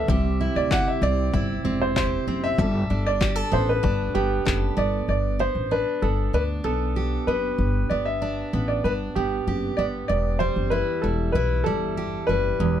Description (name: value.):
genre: acoustic pop.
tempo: 96 BPM.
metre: 4/4.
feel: straight.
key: G major.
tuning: A4 = 439 Hz.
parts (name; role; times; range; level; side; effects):
clear upright piano; melody; 0.0-12.8 s; G4 to F#5; -26 LUFS; equal; none.
picked steel-string acoustic guitar; accompaniment; 0.0-12.8 s; E2 to A4; -28 LUFS; right 3 dB; none.
upright bass; bass; 0.0-12.8 s; E1 to D2; -26 LUFS; equal; none.
punchy analog drum machine; drums; 0.1-4.6 s; handclaps, kick drum; -25 LUFS; left 2 dB; none.
room: little or no reverb.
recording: close, detailed microphones.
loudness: -21 LUFS.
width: side -10 dB against mid.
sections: 0.0-5.1 A section; 5.1-12.8 B section.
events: none.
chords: 0.1 C; 2.6 Gadd9; 10.1 Em.